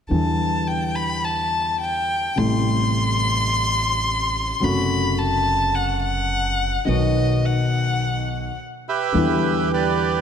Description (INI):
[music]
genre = tango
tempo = 106 BPM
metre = 4/4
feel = rubato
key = E minor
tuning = A4 = 440 Hz
[part]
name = warm violin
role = second line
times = 0.1-8.6 s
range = D#5 to C6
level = -22 LUFS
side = left 2 dB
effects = none
[part]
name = warm grand piano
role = accompaniment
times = 0.1-10.2 s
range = A1 to F#4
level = -24 LUFS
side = left 3 dB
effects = none
[part]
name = upright bass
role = bass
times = 0.1-10.2 s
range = F#1 to E2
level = -25 LUFS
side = right 2 dB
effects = none
[part]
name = bandoneon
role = melody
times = 8.9-10.2 s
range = G4 to E5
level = -20 LUFS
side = right 7 dB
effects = none
[sound]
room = moderate concert hall reverb, RT60 2.4 s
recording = none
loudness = -19 LUFS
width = side -8 dB against mid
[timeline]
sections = 0.1-9.2 A section; 9.2-10.2 B section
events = none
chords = 0.1 Em7; 2.4 Am7; 4.6 F#dim; 6.9 B; 9.2 Em7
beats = | 0.11 0.68 1.25 1.81 | 2.38 2.94 3.51 4.07 | 4.63 5.19 5.75 6.31 | 6.88 7.44 8.01 8.58 | 9.15 9.72